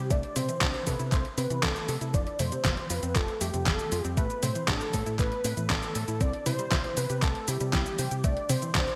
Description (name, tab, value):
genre	italo disco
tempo	118 BPM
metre	4/4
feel	straight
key	A minor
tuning	A4 = 439 Hz
part	unison lead	melody	0.0-9.0 s	G4 to D5	-36 LUFS	equal	delay
part	analog pluck	arpeggios	0.0-8.9 s	C3 to C5	-40 LUFS	equal	chorus, delay
part	fingered electric bass with an envelope filter	bass	0.0-8.9 s	F1 to C3	-35 LUFS	equal	none
part	detuned 8-bit digital drum machine	drums	0.1-9.0 s	cabasa, handclaps, hi-hat, snare drum, toms	-33 LUFS	equal	overdrive, gated reverb
part	electronic kick drum	drums	0.1-8.9 s	none	-32 LUFS	equal	overdrive
room	light reverb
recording	bright 1980s-style digital production, vinyl crackle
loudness	-29 LUFS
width	mono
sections	0.0-9.0 A section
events	none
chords	0.1 Am/C; 2.1 F; 4.2 Amadd9; 6.2 C; 8.2 Am/C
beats	| 0.10 0.61 1.12 1.63 | 2.14 2.65 3.16 3.66 | 4.17 4.68 5.19 5.70 | 6.21 6.71 7.22 7.73 | 8.24 8.75